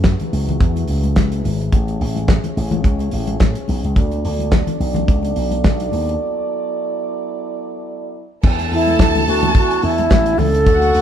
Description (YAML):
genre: disco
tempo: 107 BPM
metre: 4/4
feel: swing 56% on 16ths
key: unclear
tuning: A4 = 440 Hz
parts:
  - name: mellow French horn section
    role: sustained chords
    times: 0.0-11.0 s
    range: D3 to D5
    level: -25 LUFS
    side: right 3 dB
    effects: none
  - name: slap bass with an envelope filter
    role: bass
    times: 0.0-11.0 s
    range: G#1 to A2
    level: -20 LUFS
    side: equal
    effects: none
  - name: damped 70s drum kit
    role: drums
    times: 0.0-11.0 s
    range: crash cymbal, hi-hat, kick drum, snare drum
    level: -17 LUFS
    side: equal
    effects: none
  - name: congas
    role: percussion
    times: 0.0-10.9 s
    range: none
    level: -26 LUFS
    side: left 3 dB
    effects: none
  - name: warm studio violin section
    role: second line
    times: 8.4-11.0 s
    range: F#4 to A5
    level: -20 LUFS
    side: equal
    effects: none
  - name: bright wooden-headed alto flute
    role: melody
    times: 8.7-11.0 s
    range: E4 to A4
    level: -17 LUFS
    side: right 1 dB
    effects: none
room: light reverb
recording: band playing live in one room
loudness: -15 LUFS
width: side -9 dB against mid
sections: 0.0-8.4 A section; 8.4-11.0 B section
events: break 6.2-8.4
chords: 0.0 F#m11; 1.7 Amaj7; 4.0 D6; 6.2 E9sus4; 8.4 E7sus4